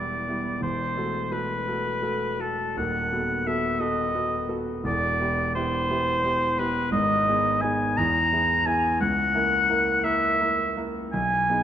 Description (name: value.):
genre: classical, romantic duo for oboe and grand piano.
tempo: 57 BPM (dotted quarters).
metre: 6/8.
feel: uneven beats, rubato.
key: E minor.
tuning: A4 = 439 Hz.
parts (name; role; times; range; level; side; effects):
warm oboe; melody; 0.0-11.6 s; A4 to A#5; -24 LUFS; left 1 dB; none.
warm concert grand piano; accompaniment; 0.0-11.6 s; D#1 to A#4; -27 LUFS; right 1 dB; none.
room: moderate concert hall reverb, RT60 2.4 s.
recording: none.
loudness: -22 LUFS.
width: side -10 dB against mid.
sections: 0.0-11.6 A section.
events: none.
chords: 0.0 Em; 0.6 F#m7b5/E; 2.8 B7/D#; 4.9 Em; 6.9 G#m; 8.0 E; 9.0 A#dim/C#; 11.1 G#m/B.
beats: | 0.63 1.67 | 2.78 3.81 | 4.86 5.90 | 6.93 7.98 | 9.01 10.04 | 11.12.